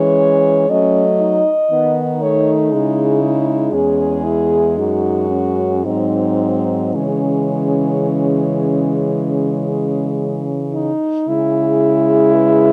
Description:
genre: classical, lyrical piece for horn quartet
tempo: 54-60 BPM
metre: 4/4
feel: rubato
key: C# minor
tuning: A4 = 440 Hz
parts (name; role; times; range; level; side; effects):
- mellow French horn; melody; 0.0-12.7 s; C#4 to D#5; -21 LUFS; equal; none
- mellow French horn; second line; 0.0-12.7 s; G#3 to E4; -21 LUFS; equal; none
- dark French horn; accompaniment; 0.0-12.7 s; E3 to B3; -22 LUFS; equal; none
- warm French horn; bass; 0.0-12.7 s; E2 to F#3; -23 LUFS; equal; none
room: light reverb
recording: close, detailed microphones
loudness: -16 LUFS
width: mono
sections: 0.0-11.3 A section; 11.3-12.7 B section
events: none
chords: 0.0 C#m/E; 0.7 F#m; 2.7 C#m; 4.8 F#sus2; 5.9 G#; 6.9 C#m

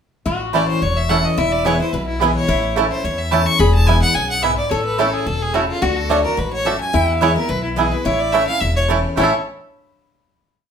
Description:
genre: bluegrass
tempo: 215 BPM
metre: 4/4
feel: swing 54% on 8ths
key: A major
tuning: A4 = 440 Hz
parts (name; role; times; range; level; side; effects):
- lap resonator guitar; second line; 0.3-9.3 s; E4 to A4; -23 LUFS; left 3 dB; none
- picked steel-string acoustic guitar; accompaniment; 0.3-9.3 s; E2 to F#4; -24 LUFS; left 2 dB; none
- upright bass; bass; 0.3-9.3 s; E1 to E2; -21 LUFS; equal; none
- clear fiddle; melody; 0.5-9.3 s; E4 to C#6; -22 LUFS; equal; none
- bluegrass banjo; arpeggios; 0.5-9.3 s; A3 to A4; -21 LUFS; right 4 dB; none
- mandolin; stabs; 0.5-9.3 s; A3 to A5; -22 LUFS; right 5 dB; none
room: wet studio reverb, RT60 0.7 s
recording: band playing live in one room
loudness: -15 LUFS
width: side -7 dB against mid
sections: 0.3-9.2 A section; 9.2-10.3 final chord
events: none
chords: 0.3 A; 1.4 E; 2.5 A; 3.6 E; 4.7 A; 5.8 D; 6.9 E; 8.1 A

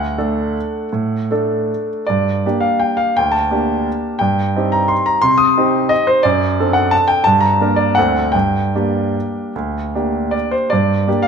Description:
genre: classical, piano waltz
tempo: 144-187 BPM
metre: 3/4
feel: rubato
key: G minor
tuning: A4 = 441 Hz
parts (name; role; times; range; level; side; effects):
- bright grand piano; solo; 0.0-11.3 s; D2 to Eb6; -14 LUFS; equal; none
room: moderate recital hall reverb, RT60 1.7 s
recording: close, detailed microphones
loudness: -14 LUFS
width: side -6 dB against mid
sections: 0.0-10.7 A section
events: none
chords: 0.0 D; 2.1 Gm; 4.2 Cm/G; 6.2 D7/F#; 7.3 Gm; 8.0 D7; 8.3 Gm

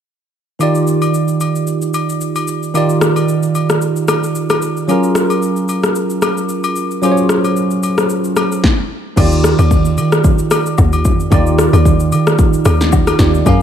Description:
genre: amapiano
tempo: 112 BPM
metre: 4/4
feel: swing 55% on 16ths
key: Eb major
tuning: A4 = 442 Hz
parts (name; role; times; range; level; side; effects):
- bell-like tine electric piano; accompaniment; 0.6-13.6 s; Eb3 to F5; -15 LUFS; right 2 dB; phaser
- deep house drum kit; drums; 0.6-13.6 s; crash cymbal, kick drum, rim click, shaker, snare drum; -16 LUFS; left 1 dB; overdrive
- agogo bells and woodblock; percussion; 0.6-13.6 s; none; -24 LUFS; left 7 dB; none
- tight log drum bass; bass; 9.2-13.6 s; Eb2 to Eb3; -14 LUFS; left 1 dB; none
room: light reverb, digital ambience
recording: none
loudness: -12 LUFS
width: side -9 dB against mid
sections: 0.6-9.2 A section; 9.2-13.6 B section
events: drop 9.2-13.6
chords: 0.6 Ebmaj9; 4.9 Gbmaj9; 9.2 Ebmaj9

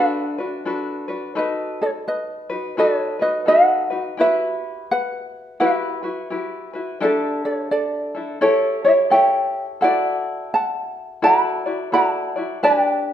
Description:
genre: Hawaiian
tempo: 85 BPM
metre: 4/4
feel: swing 62% on 8ths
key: D major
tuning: A4 = 440 Hz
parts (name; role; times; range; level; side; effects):
- ukulele; melody; 0.0-13.1 s; A4 to B5; -19 LUFS; right 1 dB; none
- tenor ukulele; accompaniment; 0.0-13.1 s; D4 to D5; -22 LUFS; left 2 dB; none
room: moderate recital hall reverb, RT60 1.4 s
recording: minimal, uncompressed stereo recording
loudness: -18 LUFS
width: side -10 dB against mid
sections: 0.0-13.1 A section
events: none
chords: 0.0 D6; 1.4 B7; 4.2 Emadd9; 7.0 A7sus4; 8.4 A7; 9.8 Dadd9

